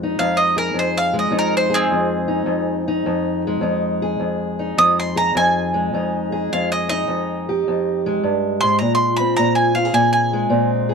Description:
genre	acoustic country blues, solo or duo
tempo	105 BPM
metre	4/4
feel	swing 66% on 8ths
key	F minor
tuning	A4 = 440 Hz
part	fingerpicked steel-string acoustic guitar	accompaniment	0.0-10.9 s	F2 to Ab4	-19 LUFS	left 1 dB	none
part	bowl-back mandolin	melody	0.2-10.7 s	C4 to Eb6	-18 LUFS	right 2 dB	none
room	moderate studio reverb, RT60 0.5 s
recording	dark, warm production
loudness	-16 LUFS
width	side -5 dB against mid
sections	0.0-10.9 A section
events	none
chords	0.0 Fm9; 8.8 Bbsus2

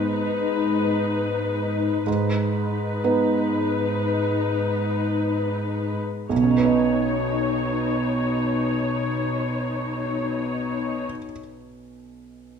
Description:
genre	cinematic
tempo	free time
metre	none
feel	none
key	B major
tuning	A4 = 441 Hz
part	dark symphonic viola section	accompaniment	0.0-11.0 s	D#4 to C#5	-25 LUFS	left 5 dB	none
part	felt-muted upright piano	accompaniment	0.0-12.6 s	B1 to D#5	-25 LUFS	right 5 dB	none
part	dark studio cello section	bass	0.0-11.1 s	G#2 to B2	-28 LUFS	left 1 dB	none
room	moderate recital hall reverb, RT60 1.4 s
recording	minimal, uncompressed stereo recording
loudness	-21 LUFS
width	side -7 dB against mid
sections	0.0-6.3 A section; 6.3-10.9 B section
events	slowing down 0.0-6.3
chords	0.0 G#m; 6.3 Badd9

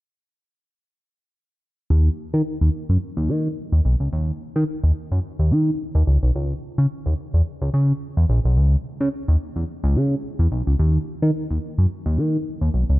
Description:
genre	funk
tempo	108 BPM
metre	4/4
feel	swing 56% on 16ths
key	Eb phrygian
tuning	A4 = 442 Hz
part	chorused synth bass	solo	1.9-13.0 s	Bb1 to Eb3	-18 LUFS	equal	none
room	light reverb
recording	dark, warm production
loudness	-19 LUFS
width	side -18 dB against mid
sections	1.9-13.0 A section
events	none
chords	none

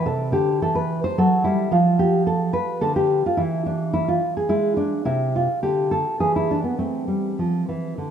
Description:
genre	classical, baroque-style dance for nylon-string guitar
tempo	107 BPM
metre	3/4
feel	uneven beats, rubato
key	A minor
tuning	A4 = 439 Hz
part	nylon-string guitar	solo	0.0-8.1 s	C3 to C5	-19 LUFS	equal	none
room	wet plate reverb, RT60 3.3 s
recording	rough home demo mix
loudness	-19 LUFS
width	side -8 dB against mid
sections	0.0-8.1 A section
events	none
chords	0.1 Cmaj13; 1.7 Dm/F; 3.4 E; 5.1 N.C.; 6.8 Am

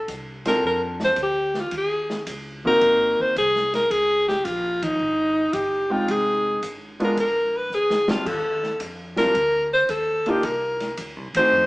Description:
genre	jazz, small-group swing and bop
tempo	110 BPM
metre	4/4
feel	swing 69% on 8ths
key	Bb major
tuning	A4 = 439 Hz
part	clear alto saxophone	melody	0.0-11.7 s	Eb4 to C5	-20 LUFS	equal	none
part	upright bass	bass	0.0-11.7 s	F1 to F2	-39 LUFS	equal	none
part	open jazz drum kit	drums	0.1-11.4 s	crash cymbal, hi-hat, kick drum, ride cymbal, snare drum	-33 LUFS	equal	none
part	warm baby grand piano	accompaniment	0.5-11.7 s	G3 to G5	-26 LUFS	equal	none
room	wet large studio reverb, RT60 1.2 s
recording	band playing live in one room, small speaker sound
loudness	-20 LUFS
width	side -22 dB against mid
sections	0.0-11.7 A section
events	band accent 4.7, 11.3; drum fill 7.7-8.3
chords	0.0 Bbmaj9 (rootless); 1.7 Ebm7; 2.8 Ab7; 3.9 Dbsus2; 6.1 Fm7; 7.2 Bb; 8.3 Ebmaj7sus2; 10.4 Cm9

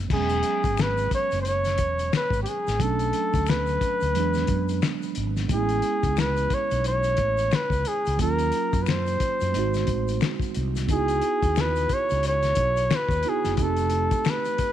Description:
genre	R&B, neo-soul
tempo	89 BPM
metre	4/4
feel	swing 59% on 16ths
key	E major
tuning	A4 = 437 Hz
part	mellow tine electric piano	accompaniment	0.0-14.7 s	F#3 to G4	-30 LUFS	right 14 dB	fast stereo tremolo
part	mellow fretless electric bass	bass	0.0-14.6 s	E1 to F#2	-27 LUFS	equal	none
part	warm flugelhorn	melody	0.1-14.7 s	G4 to C#5	-25 LUFS	left 1 dB	none
part	cloth-damped thuddy drum kit	drums	0.1-14.7 s	crash cymbal, finger snaps, hi-hat, kick drum, snare drum	-28 LUFS	left 3 dB	none
part	tube shaker and finger snaps	percussion	0.1-14.7 s	none	-43 LUFS	left 14 dB	none
room	light reverb, small room ambience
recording	1960s-style stereo with parts hard left and right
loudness	-22 LUFS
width	side -11 dB against mid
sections	0.1-14.7 A section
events	none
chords	0.1 E6; 2.8 Bm7; 4.2 E7; 5.5 Amaj7; 8.2 D#m7; 9.5 G#7; 10.9 C#m11; 13.6 F9

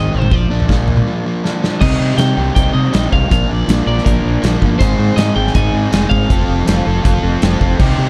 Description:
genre	indie rock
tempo	160 BPM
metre	4/4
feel	straight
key	C minor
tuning	A4 = 441 Hz
part	electric guitar at the edge of break-up	melody	0.0-6.8 s	Bb4 to Ab5	-25 LUFS	equal	none
part	crunchy overdriven guitar	riff	0.0-8.1 s	Eb3 to A4	-21 LUFS	equal	none
part	fuzz fingered electric bass	bass	0.0-8.1 s	F1 to C3	-19 LUFS	equal	overdrive
part	loose indie drum kit	drums	0.2-7.9 s	crash cymbal, hi-hat, kick drum, snare drum, toms	-19 LUFS	equal	none
part	crunchy overdriven guitar	riff	1.8-8.1 s	Ab2 to Bb4	-23 LUFS	equal	analog chorus, slapback echo
room	little or no reverb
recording	dark, warm production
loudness	-14 LUFS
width	mono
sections	0.0-1.8 A section; 1.8-8.1 B section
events	break 1.1-1.8; drum fill 1.4-1.8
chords	0.3 Bb; 1.8 Cm; 3.3 Bb; 4.8 Ab; 6.3 F

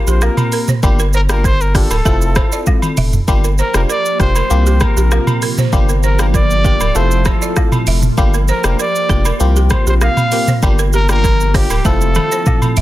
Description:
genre	afrobeats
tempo	98 BPM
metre	4/4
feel	straight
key	G dorian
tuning	A4 = 439 Hz
part	barking FM electric piano	accompaniment	0.0-12.8 s	Bb3 to A4	-22 LUFS	left 4 dB	chorus
part	breathy trumpet	melody	0.1-12.8 s	G4 to F5	-20 LUFS	equal	none
part	balafon	riff	0.1-12.8 s	G4 to E5	-24 LUFS	right 6 dB	tape echo
part	saturated sub bass	bass	0.1-12.8 s	D1 to C2	-14 LUFS	equal	none
part	afro-pop drum kit	drums	0.1-12.8 s	hi-hat, kick drum, rim click, shaker, toms	-16 LUFS	equal	soft clipping on snare
part	woodblock and agogo bells	percussion	0.2-12.8 s	none	-27 LUFS	right 1 dB	none
part	glassy FM pad	sustained chords	3.6-12.8 s	C3 to A4	-24 LUFS	right 1 dB	ensemble chorus, built-in reverb
room	little or no reverb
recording	dense, heavily limited modern master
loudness	-11 LUFS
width	side -15 dB against mid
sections	0.0-12.8 A section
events	drum fill 2.7-3.3, 11.8-12.8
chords	0.0 C7sus4; 0.8 Gm7; 2.1 Fmaj7; 3.3 Gm7; 4.5 C7sus4; 5.7 Gm7; 7.0 Fmaj7; 8.2 Gm7; 9.4 C7sus4; 10.6 Gm7; 11.8 Fmaj7

